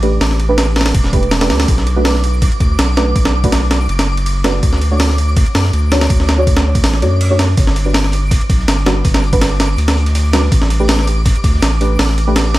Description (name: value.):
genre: drum and bass, jungle.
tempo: 163 BPM.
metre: 4/4.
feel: straight.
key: unclear.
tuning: A4 = 441 Hz.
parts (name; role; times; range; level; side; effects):
deep mellow chord stab; stabs; 0.0-12.3 s; G3 to C#5; -20 LUFS; right 1 dB; chorus, dub echo.
saturated sub bass; bass; 0.0-12.6 s; E1 to F#2; -14 LUFS; equal; tube saturation.
breakbeat sampler-style drum kit; drums; 0.0-12.6 s; hi-hat, kick drum, ride cymbal, snare drum; -15 LUFS; equal; studio reverb.
twinkling granular texture; texture; 0.0-12.6 s; D6; -26 LUFS; equal; built-in reverb.
crunchy breakbeat drum kit; drums; 7.6-12.6 s; hi-hat, snare drum; -31 LUFS; right 2 dB; none.
room: little or no reverb.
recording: none.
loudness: -11 LUFS.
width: side -17 dB against mid.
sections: 0.0-12.6 A section.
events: kick drops out 6.8-7.6.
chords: 0.0 A9sus4; 1.7 Bm7; 4.6 Dmaj7; 7.6 Gmaj7; 10.5 A9sus4.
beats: | 0.21 0.58 0.95 1.32 | 1.69 2.05 2.42 2.79 | 3.16 3.52 3.89 4.26 | 4.63 5.00 5.37 5.73 | 6.10 6.47 6.84 7.21 | 7.57 7.94 8.31 8.68 | 9.05 9.41 9.78 10.15 | 10.52 10.89 11.26 11.62 | 11.99 12.36.